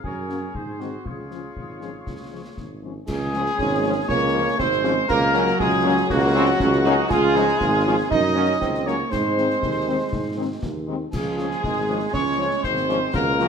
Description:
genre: military-style march for wind band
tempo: 119 BPM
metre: 2/4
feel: straight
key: Db major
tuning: A4 = 442 Hz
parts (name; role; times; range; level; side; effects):
- mellow cornet; melody; 0.0-13.5 s; F4 to Eb5; -27 LUFS; right 1 dB; none
- clear woodwind section; second line; 0.0-13.5 s; Gb4 to Eb5; -26 LUFS; left 3 dB; none
- mellow tuba; bass; 0.0-13.5 s; Ab1 to Ab2; -25 LUFS; right 2 dB; none
- concert bass drum, concert snare drum and clash cymbals; drums; 0.0-13.5 s; none; -32 LUFS; left 2 dB; none
- warm French horn section; accompaniment; 0.3-13.5 s; Eb3 to Db4; -28 LUFS; left 6 dB; none
- warm euphonium; second line; 3.1-13.5 s; Gb3 to Eb4; -27 LUFS; right 3 dB; none
- clear trombone section; sustained chords; 3.6-13.5 s; F3 to F4; -27 LUFS; right 3 dB; none
room: moderate scoring stage reverb, RT60 1.6 s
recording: none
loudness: -19 LUFS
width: side -6 dB against mid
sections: 0.0-3.1 A section; 3.1-13.5 A section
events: none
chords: 0.0 Gb; 0.5 Ab7; 1.1 Db; 5.1 Gb/Db; 7.1 Db; 8.1 Gb; 9.1 Ab; 11.1 Db

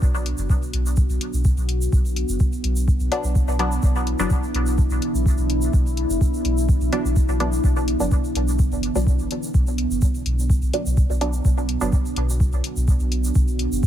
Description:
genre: dub techno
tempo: 126 BPM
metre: 4/4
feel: straight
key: B minor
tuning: A4 = 439 Hz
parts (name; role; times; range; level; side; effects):
- deep dark ambient pad; sustained chords; 0.0-13.9 s; B3 to F#4; -27 LUFS; right 1 dB; chorus, built-in reverb, sidechain pumping
- soft dub sub bass; bass; 0.0-13.8 s; F#1 to B1; -23 LUFS; equal; tube saturation, sidechain pumping
- electronic kick drum; drums; 0.0-13.9 s; none; -20 LUFS; equal; none
- tube shaker; percussion; 0.0-13.9 s; none; -36 LUFS; right 3 dB; none
- electronic hi-hat; drums; 0.3-13.7 s; none; -30 LUFS; left 5 dB; overdrive
- filtered dub chord stab; stabs; 3.1-11.9 s; F#3 to D4; -28 LUFS; equal; chorus, phaser, sidechain pumping, dub echo
room: little or no reverb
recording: none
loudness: -18 LUFS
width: side -11 dB against mid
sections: 0.0-13.9 A section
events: filter sweep on synth stab 0.0-13.9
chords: 0.0 Bm

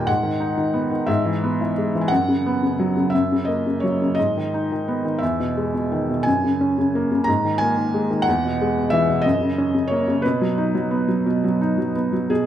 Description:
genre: classical, lyrical solo piano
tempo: 59 BPM (dotted quarters)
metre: 6/8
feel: rubato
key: B major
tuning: A4 = 440 Hz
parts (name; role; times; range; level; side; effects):
- felt-muted upright piano; solo; 0.0-12.5 s; E2 to A#5; -18 LUFS; equal; none
room: moderate recital hall reverb, RT60 1.5 s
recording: none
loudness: -18 LUFS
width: side -10 dB against mid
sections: 0.0-12.3 A section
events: none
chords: 0.1 G#m; 1.1 E/G#; 2.1 F#sus4; 3.1 F#; 4.2 G#m; 5.2 Emaj7; 6.3 F#add9; 7.3 G#sus2; 8.3 E; 9.3 F#; 10.2 B

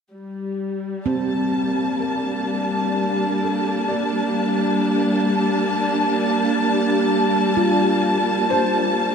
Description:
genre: ambient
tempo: 65 BPM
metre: 4/4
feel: straight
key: G minor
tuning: A4 = 438 Hz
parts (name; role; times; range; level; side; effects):
- warm symphonic string section; sustained chords; 0.1-9.1 s; G3 to A5; -19 LUFS; equal; none
- felt-muted upright piano; melody; 1.1-9.1 s; A4 to D5; -32 LUFS; left 4 dB; none
- handpan; arpeggios; 1.1-9.1 s; C4 to F4; -26 LUFS; right 1 dB; ping-pong delay
room: wet cathedral reverb, RT60 6.0 s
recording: in a vast, echoing space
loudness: -18 LUFS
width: side -6 dB against mid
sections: 0.1-9.1 A section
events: fade-in on felt piano 0.1-9.1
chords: 0.1 Gmadd9

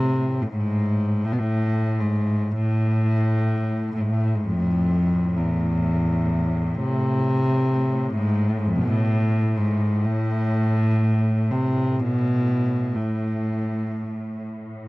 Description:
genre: caucasian folk, Caucasian lament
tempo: 63 BPM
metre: 4/4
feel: uneven beats, rubato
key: A harmonic minor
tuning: A4 = 441 Hz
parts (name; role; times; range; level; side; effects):
- rich cello; melody; 0.0-14.5 s; E2 to C3; -21 LUFS; equal; none
- rich studio cello section; drone; 0.0-14.9 s; A2; -29 LUFS; right 1 dB; none
room: moderate booth ambience, RT60 0.2 s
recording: dry, close 1970s-style studio recording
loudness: -20 LUFS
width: side -21 dB against mid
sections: 0.5-14.9 A section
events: none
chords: none

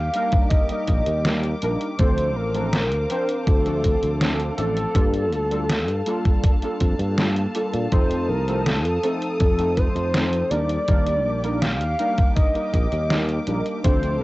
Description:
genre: vaporwave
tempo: 81 BPM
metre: 4/4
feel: straight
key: Eb lydian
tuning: A4 = 440 Hz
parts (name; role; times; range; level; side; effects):
- warm velvety synth lead; melody; 0.0-14.2 s; A4 to F5; -26 LUFS; equal; chorus, cassette tape, tape echo
- rich studio string section; sustained chords; 0.0-14.2 s; G4 to Eb6; -36 LUFS; left 1 dB; cassette tape
- sustaining fretless electric bass; bass; 0.0-14.2 s; A1 to Bb2; -25 LUFS; equal; none
- warbly lo-fi synth keys; accompaniment; 0.1-14.2 s; F3 to C5; -27 LUFS; equal; ensemble chorus, cassette tape, analog delay
- detuned 8-bit digital drum machine; drums; 0.1-14.2 s; hi-hat, snare drum; -26 LUFS; equal; cassette tape
- electronic kick drum; drums; 0.3-14.0 s; none; -19 LUFS; equal; cassette tape
room: little or no reverb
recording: home recording on cassette, nothing above 8.0 kHz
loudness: -19 LUFS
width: side -19 dB against mid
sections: 0.0-14.2 A section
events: none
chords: 0.0 Ebmaj7; 2.0 Dm7; 5.0 Gm9; 7.9 F7; 10.5 Ebmaj7

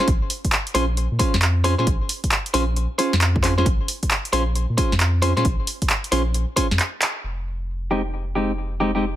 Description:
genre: UK garage, two-step garage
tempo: 134 BPM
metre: 4/4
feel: swing 65% on 16ths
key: unclear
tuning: A4 = 440 Hz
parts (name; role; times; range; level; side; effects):
- clean electric guitar; stabs; 0.0-9.0 s; Ab3 to C5; -23 LUFS; equal; low-pass filter, ping-pong delay
- punchy analog drum machine; drums; 0.0-7.1 s; handclaps, hi-hat, snare drum; -23 LUFS; right 1 dB; none
- saturated sub bass; bass; 0.1-9.2 s; F1 to Bb2; -22 LUFS; equal; sidechain pumping
- electronic kick drum; drums; 0.1-6.7 s; none; -23 LUFS; equal; none
room: little or no reverb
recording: none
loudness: -19 LUFS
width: side -13 dB against mid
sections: 0.0-7.2 A section; 7.2-9.2 B section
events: drum fill 7.0; band accent 7.0; filter sweep on clean electric guitar 7.2-9.2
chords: 0.0 Bbm9; 7.2 Fm9

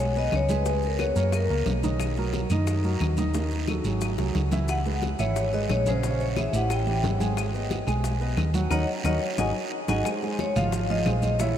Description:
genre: Afro-Cuban jazz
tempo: 179 BPM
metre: 4/4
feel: straight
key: G# minor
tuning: A4 = 441 Hz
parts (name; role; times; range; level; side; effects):
- vibraphone with medium hard mallets; melody; 0.0-1.7, 4.7-11.6 s; A#4 to G#5; -30 LUFS; left 2 dB; ping-pong delay
- warm upright piano; accompaniment; 0.0-11.6 s; C#3 to G#5; -29 LUFS; right 3 dB; wide subtle chorus
- hollow-body short-scale fingered electric bass; bass; 0.0-11.6 s; G#1 to F#2; -26 LUFS; equal; none
- bongos; percussion; 0.2-11.6 s; none; -36 LUFS; left 7 dB; none
- congas; percussion; 0.2-11.6 s; none; -34 LUFS; left 2 dB; none
- maracas; percussion; 0.2-11.6 s; none; -45 LUFS; left 5 dB; none
- claves; percussion; 0.3-11.2 s; none; -40 LUFS; left 8 dB; none
- guiro; percussion; 0.3-11.6 s; none; -40 LUFS; right 6 dB; none
room: moderate huge ambient reverb, RT60 6.9 s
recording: dreamy mix soaked in reverb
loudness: -23 LUFS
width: side -10 dB against mid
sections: 0.0-10.1 A section; 10.1-11.6 B section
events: drum fill 4.2-4.7; band accent 8.7-10.1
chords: 0.0 G#m; 0.7 C#5; 1.3 F#; 2.0 Bmaj7; 3.3 D#dim; 4.0 G#7; 4.7 C#m7; 6.0 A#m7b5; 6.7 A5; 7.4 G#m7; 8.7 D#m7; 9.4 G#5; 10.1 G#69

